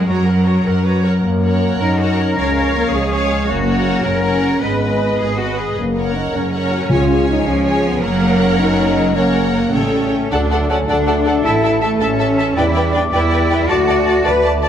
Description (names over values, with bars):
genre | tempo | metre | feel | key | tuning
cinematic, heroic adventure film score | 106 BPM (dotted quarters) | 6/8 | straight | F# major, D major from 10.3 s | A4 = 439 Hz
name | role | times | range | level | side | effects
warm symphonic violin section | melody | 0.0-14.7 s | D#5 to A#5 | -28 LUFS | left 3 dB | none
rich symphonic violin section | second line | 0.0-14.7 s | A#4 to E5 | -26 LUFS | left 1 dB | none
warm symphonic viola section | accompaniment | 0.0-14.7 s | F#4 to D5 | -24 LUFS | right 1 dB | none
clear symphonic double bass section | bass | 0.0-14.7 s | F#1 to F#2 | -19 LUFS | right 2 dB | none
rich symphonic cello section | bass | 0.0-14.4 s | C#3 to B4 | -21 LUFS | right 1 dB | none
bright trombone section | sustained chords | 1.2-14.7 s | C#3 to C#4 | -25 LUFS | right 5 dB | none
warm French horn section | sustained chords | 1.2-14.4 s | G#3 to B4 | -19 LUFS | left 4 dB | none
timpani | percussion | 6.9-7.4 s | C#3 | -21 LUFS | right 1 dB | none
bright clarinet | second line | 10.3-14.7 s | D5 to F#5 | -25 LUFS | left 1 dB | none
concert flute | second line | 10.3-14.7 s | G5 to A5 | -24 LUFS | left 1 dB | none
mellow trumpet section | stabs | 10.3-14.7 s | A4 to D5 | -22 LUFS | equal | none
room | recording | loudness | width
wet scoring stage reverb, RT60 1.5 s | none | -13 LUFS | side -9 dB against mid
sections
0.0-1.2 A section; 1.2-10.3 A section; 10.3-14.7 B section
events
none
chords
0.0 F#; 2.4 C#; 3.5 F#; 4.6 G#m; 5.8 F#; 6.9 C#; 8.0 F#; 9.7 A7; 10.3 D; 11.5 A; 12.6 Em7; 13.7 D